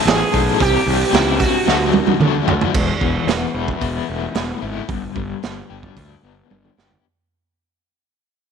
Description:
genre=psychedelic rock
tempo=112 BPM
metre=4/4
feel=straight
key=unclear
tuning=A4 = 438 Hz
part: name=sitar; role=melody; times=0.0-2.4 s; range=E4 to G#4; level=-21 LUFS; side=right 5 dB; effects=slapback echo
part: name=crunchy overdriven guitar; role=riff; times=0.0-7.0 s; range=E2 to A4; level=-22 LUFS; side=left 14 dB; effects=tremolo
part: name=fuzz fingered electric bass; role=bass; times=0.1-6.9 s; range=E1 to D3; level=-22 LUFS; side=equal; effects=overdrive
part: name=crunchy breakbeat drum kit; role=drums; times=0.1-7.0 s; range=crash cymbal, hi-hat, kick drum, snare drum, toms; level=-20 LUFS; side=right 6 dB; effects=none
part: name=congas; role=percussion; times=0.3-2.7 s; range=none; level=-31 LUFS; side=right 9 dB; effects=none
room=studio ambience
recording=1960s-style stereo with parts hard left and right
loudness=-16 LUFS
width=side -6 dB against mid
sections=0.0-2.7 A section; 2.7-7.0 B section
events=drum fill 1.7-2.7, 6.5-7.0; fade-out 2.7-7.0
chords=0.0 Amaj7; 0.6 Csus2; 1.7 D; 2.7 Esus4; 4.9 G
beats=0.07 | 0.60 1.13 1.67 2.20 | 2.73 3.27 3.81 4.34 | 4.88 5.42 5.96 6.50

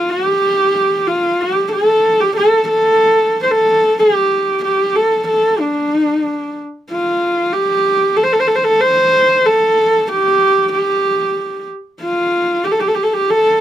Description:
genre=mongolian traditional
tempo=93 BPM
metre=4/4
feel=straight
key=unclear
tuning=A4 = 440 Hz
part: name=dark horsehead fiddle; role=solo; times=0.0-13.6 s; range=D4 to C5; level=-12 LUFS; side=equal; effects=none
room=light reverb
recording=close, detailed microphones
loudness=-12 LUFS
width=side -11 dB against mid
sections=0.0-6.9 A section; 6.9-13.6 B section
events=none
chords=none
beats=0.41 1.06 | 1.71 2.36 3.00 3.65 | 4.30 4.94 5.59 6.23 | 6.87 7.51 8.16 8.80 | 9.44 10.08 10.72 11.36 | 12.00 12.64 13.28

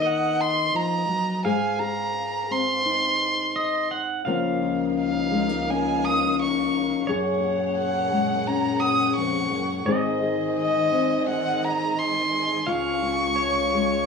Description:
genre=acoustic folk-pop ballad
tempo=85 BPM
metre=4/4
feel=straight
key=Db major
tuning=A4 = 441 Hz
part: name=dark violin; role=melody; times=0.0-14.1 s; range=Eb5 to Eb6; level=-25 LUFS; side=right 2 dB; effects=none
part: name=pedal steel guitar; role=second line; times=0.0-14.1 s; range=Db5 to Gb5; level=-29 LUFS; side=left 2 dB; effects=none
part: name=fingerpicked steel-string acoustic guitar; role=accompaniment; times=0.0-14.1 s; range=F2 to Ab4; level=-25 LUFS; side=left 4 dB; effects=none
part: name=warm studio string section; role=sustained chords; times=4.3-14.1 s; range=Db2 to Gb5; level=-30 LUFS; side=equal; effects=none
room=moderate studio reverb, RT60 0.5 s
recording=studio reverb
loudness=-21 LUFS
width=side -5 dB against mid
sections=0.0-14.1 A section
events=none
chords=0.0 Ebm; 1.4 Ab; 4.3 Db6; 7.1 Gbadd9; 9.9 Ab; 12.7 Db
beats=0.04 0.74 | 1.44 2.15 2.85 3.56 | 4.27 4.97 5.67 6.38 | 7.08 7.77 8.47 9.17 | 9.87 10.56 11.26 11.97 | 12.67 13.38

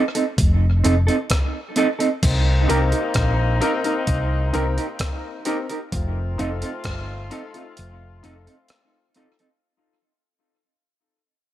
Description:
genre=dub reggae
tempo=65 BPM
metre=4/4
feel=straight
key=unclear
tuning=A4 = 440 Hz
part: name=mellow electric guitar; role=accompaniment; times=0.0-9.5 s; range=C4 to Bb4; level=-24 LUFS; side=right 3 dB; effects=tape echo
part: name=breakbeat sampler-style drum kit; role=drums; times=0.1-9.6 s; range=crash cymbal, hi-hat, kick drum, rim click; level=-24 LUFS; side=equal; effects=none
part: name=hollow-body short-scale fingered electric bass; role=bass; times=0.4-8.5 s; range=F1 to C2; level=-20 LUFS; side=equal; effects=none
part: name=mellow horn section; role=second line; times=2.2-9.1 s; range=A3 to F4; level=-28 LUFS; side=left 3 dB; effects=tape echo
part: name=warm grand piano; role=stabs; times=2.7-9.3 s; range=C4 to Bb4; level=-29 LUFS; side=left 5 dB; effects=tape echo
room=digital ambience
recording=none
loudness=-19 LUFS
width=side -13 dB against mid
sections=0.0-2.2 A section; 2.2-9.6 B section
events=break 0.0-2.2, 7.8-9.6; fade-out 2.2-9.6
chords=0.0 F7; 2.2 Cm7; 5.9 F7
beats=0.38 1.30 | 2.23 3.15 4.08 5.00 | 5.92 6.85 7.77 8.70

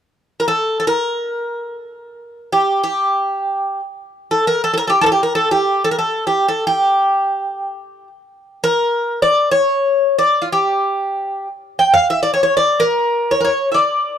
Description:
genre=turkish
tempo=free time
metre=none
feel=none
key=G makam nikriz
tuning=A4 = 440 Hz
part: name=Greek bouzouki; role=melody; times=0.4-14.2 s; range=F4 to G5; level=-14 LUFS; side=equal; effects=none
room=light reverb, small room ambience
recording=dry, close 1970s-style studio recording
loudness=-14 LUFS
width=side -9 dB against mid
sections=0.2-14.2 A section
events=none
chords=none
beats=free time

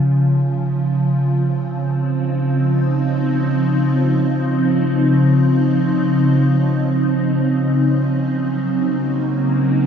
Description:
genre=ambient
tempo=free time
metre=none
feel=none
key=Db major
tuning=A4 = 440 Hz
part: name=evolving wavetable pad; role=sustained chords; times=0.0-9.9 s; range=Db3 to Gb4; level=-15 LUFS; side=equal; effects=ensemble chorus, built-in reverb, phaser
room=wet huge ambient reverb, RT60 7.7 s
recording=dark, warm production, nothing above 7.7 kHz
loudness=-15 LUFS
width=side -7 dB against mid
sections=0.0-9.9 A section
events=none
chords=0.0 Dbmaj9; 6.8 Gb/Db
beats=free time

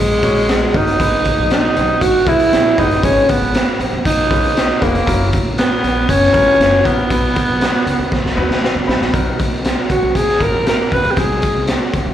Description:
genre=uptempo 1960s-style soul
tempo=118 BPM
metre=4/4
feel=straight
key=B major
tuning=A4 = 441 Hz
part: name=breathy alto saxophone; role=melody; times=0.0-11.7 s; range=G#3 to B4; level=-15 LUFS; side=equal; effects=plate reverb, slapback echo
part: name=upright bass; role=bass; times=0.0-12.1 s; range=E#1 to D#2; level=-22 LUFS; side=equal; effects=none
part: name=clear grand piano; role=accompaniment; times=0.2-11.9 s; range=F#3 to D#5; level=-24 LUFS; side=left 4 dB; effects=plate reverb, slapback echo
part: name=raw garage drum kit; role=drums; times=0.2-12.1 s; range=hi-hat, kick drum, snare drum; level=-17 LUFS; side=equal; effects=none
room=moderate club reverb, RT60 0.8 s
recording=live gig heard through the venue's PA, club reverb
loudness=-12 LUFS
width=side -11 dB against mid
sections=0.0-9.1 A section; 9.1-12.1 B section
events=drum fill 8.1-9.1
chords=0.0 F#; 1.0 G#m; 3.0 C#7/G#; 5.1 F#7; 7.1 B; 9.1 Bmaj7; 11.2 G#7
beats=0.49 | 1.00 1.51 2.02 2.53 | 3.04 3.54 4.05 4.56 | 5.07 5.58 6.09 6.60 | 7.11 7.61 8.12 8.63 | 9.14 9.65 10.16 10.67 | 11.18 11.69

